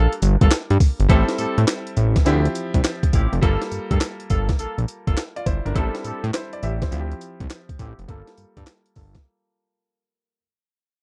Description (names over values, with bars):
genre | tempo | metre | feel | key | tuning
R&B, new jack swing | 103 BPM | 4/4 | swing 66% on 16ths | G dorian | A4 = 441 Hz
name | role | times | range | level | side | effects
nylon-string guitar | melody | 0.0-0.5 s | none | barely audible | none | none
bright grand piano | accompaniment | 0.0-10.4 s | E3 to E5 | -31 LUFS | equal | low-pass filter
mellow horn section | stabs | 0.0-9.2 s | Bb3 to A4 | -31 LUFS | equal | low-pass filter, slapback echo
fat analog bass | bass | 0.0-9.2 s | F1 to A2 | -22 LUFS | equal | none
breakbeat sampler-style drum kit | drums | 0.1-9.2 s | handclaps, hi-hat, kick drum, snare drum, tambourine | -22 LUFS | equal | vintage 12-bit sampler grit
room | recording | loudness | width
little or no reverb | dry, close 1970s-style studio recording | -21 LUFS | mono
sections
0.0-1.1 A section; 1.1-10.4 B section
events
fade-out 1.1-10.4; filter sweep 1.1-10.4; break 9.2-10.4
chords
0.0 Gm9; 1.1 Am7; 2.3 Dm11; 3.4 Gm9; 5.8 Am7; 6.9 Dm11; 8.1 Gm9